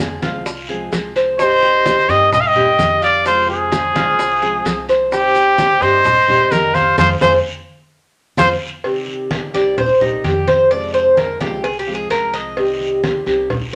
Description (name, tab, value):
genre	latin, Cuban son and guajira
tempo	129 BPM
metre	4/4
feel	straight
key	C minor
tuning	A4 = 440 Hz
part	nylon-string guitar	accompaniment	0.0-13.8 s	C3 to G4	-25 LUFS	equal	none
part	Cuban tres	arpeggios	0.0-13.0 s	Eb4 to F5	-21 LUFS	equal	none
part	upright bass	bass	0.0-13.8 s	C2 to G2	-32 LUFS	equal	none
part	guiro	percussion	0.0-13.8 s	none	-34 LUFS	equal	none
part	bongos and cowbell	percussion	0.2-13.7 s	none	-27 LUFS	equal	none
part	congas	percussion	0.2-13.7 s	none	-27 LUFS	equal	none
part	maracas	percussion	0.2-8.5 s	none	-38 LUFS	equal	none
part	bright trumpet	melody	1.4-8.5 s	G4 to F5	-15 LUFS	equal	none
part	hollow concert flute	second line	1.4-8.5 s	C5 to Ab5	-28 LUFS	equal	none
room	moderate studio reverb, RT60 0.6 s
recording	none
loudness	-15 LUFS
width	mono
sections	0.0-8.8 A section; 8.8-13.8 B section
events	band accent 7.0-8.8; drum fill 8.1-8.8; Cuban tres solo 8.8-13.8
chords	0.0 Fm; 1.4 Cm; 3.3 Fm; 5.1 Cm; 7.0 Fm; 8.8 Cm; 10.7 Fm; 12.6 Cm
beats	0.46 0.93 | 1.39 1.86 2.32 2.79 | 3.26 3.72 4.19 4.65 | 5.12 5.59 6.05 6.52 | 6.98 7.45 7.92 8.38 | 8.85 9.31 9.78 10.24 | 10.71 11.18 11.64 12.11 | 12.57 13.04 13.51